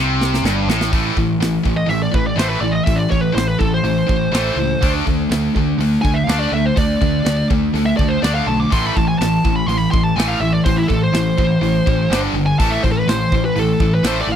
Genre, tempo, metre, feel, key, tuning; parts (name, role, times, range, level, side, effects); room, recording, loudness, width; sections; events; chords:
heavy metal; 124 BPM; 4/4; straight; A minor; A4 = 440 Hz
high-gain distorted guitar; riff; 0.0-14.4 s; G2 to D4; -21 LUFS; left 12 dB; distortion
high-gain distorted guitar; riff; 0.0-14.4 s; G2 to D4; -21 LUFS; right 11 dB; distortion
growling picked electric bass; bass; 0.0-14.4 s; G1 to D2; -22 LUFS; equal; overdrive
modern studio drum kit; drums; 0.2-14.2 s; hi-hat, kick drum, snare drum; -20 LUFS; equal
high-gain lead guitar; melody; 1.8-14.4 s; E4 to D6; -21 LUFS; equal; distortion
studio ambience; dry, close 1970s-style studio recording; -14 LUFS; side -9 dB against mid
0.9-14.4 A section
drum fill 0.0-0.9; lead electric guitar solo 0.9-14.4
0.0 Am; 4.8 D5; 8.7 Am; 12.1 G5; 12.6 A5